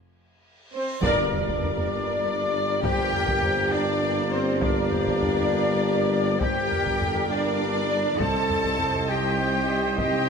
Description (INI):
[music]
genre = cinematic, epic orchestral film score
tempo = 67 BPM (dotted quarters)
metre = 6/8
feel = straight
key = G minor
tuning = A4 = 445 Hz
[part]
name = reverse cymbal and impact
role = sound effects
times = 0.7-2.8 s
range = none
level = -41 LUFS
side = equal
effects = none
[part]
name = rich symphonic violin section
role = melody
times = 0.7-10.3 s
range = C5 to A5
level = -34 LUFS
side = left 3 dB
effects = none
[part]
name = rich symphonic violin section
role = second line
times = 0.7-10.3 s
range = C5 to A5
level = -32 LUFS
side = left 1 dB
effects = none
[part]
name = clear trumpet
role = stabs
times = 0.7-10.3 s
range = C5 to A5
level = -30 LUFS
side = equal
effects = none
[part]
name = clear symphonic cello section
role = bass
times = 0.7-10.3 s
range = C4 to A4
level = -30 LUFS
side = right 1 dB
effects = none
[part]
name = hollow concert flute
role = second line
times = 1.0-10.3 s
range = A4 to Eb5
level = -34 LUFS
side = left 4 dB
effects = none
[part]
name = clear symphonic viola section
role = accompaniment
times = 1.0-10.3 s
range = Bb4 to Eb5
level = -32 LUFS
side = equal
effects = none
[part]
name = warm French horn section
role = sustained chords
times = 1.0-10.3 s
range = Bb3 to G4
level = -31 LUFS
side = left 5 dB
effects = none
[part]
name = mellow tuba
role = bass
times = 1.0-10.3 s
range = G1 to C2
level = -29 LUFS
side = right 2 dB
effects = none
[part]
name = rich symphonic double bass section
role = bass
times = 1.0-10.3 s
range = C2 to G2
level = -34 LUFS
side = right 4 dB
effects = none
[part]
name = taiko ensemble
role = drums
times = 1.0-10.3 s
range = none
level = -31 LUFS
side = left 1 dB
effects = none
[part]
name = timpani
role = percussion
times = 1.0-1.9 s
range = G2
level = -37 LUFS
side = equal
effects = none
[sound]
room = moderate scoring stage reverb, RT60 1.9 s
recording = none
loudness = -22 LUFS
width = side -6 dB against mid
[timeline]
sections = 0.0-1.0 A section; 1.0-10.3 B section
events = break 0.0-1.0; drum fill 0.6-1.0; reverse cymbal 0.7-1.0; band accent 1.0-1.6; impact 1.0-2.8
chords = 0.0 N.C.; 1.0 Gm; 8.2 Cm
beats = 0.14 | 1.03 1.93 | 2.82 3.72 | 4.61 5.51 | 6.40 7.30 | 8.19 9.09 | 9.98